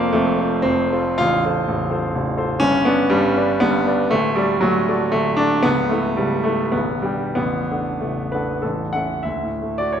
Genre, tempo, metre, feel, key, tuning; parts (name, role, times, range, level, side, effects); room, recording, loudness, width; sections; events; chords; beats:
classical, romantic character piece for solo piano; 89-131 BPM; 3/4; rubato; D major; A4 = 439 Hz
warm grand piano; solo; 0.0-10.0 s; A0 to G5; -17 LUFS; equal
wet recital hall reverb, RT60 1.5 s; -17 LUFS; side -8 dB against mid
0.0-9.2 A section
0.0 F; 1.2 F/A; 2.6 G; 4.1 D; 5.6 A/C#; 6.7 G/B; 7.4 D/A; 8.6 A; 9.2 D
0.15 0.64 | 1.20 1.68 2.14 | 2.61 3.11 3.62 | 4.12 4.63 5.13 | 5.64 6.19 6.75 | 7.37 8.03 8.64 | 9.25 9.81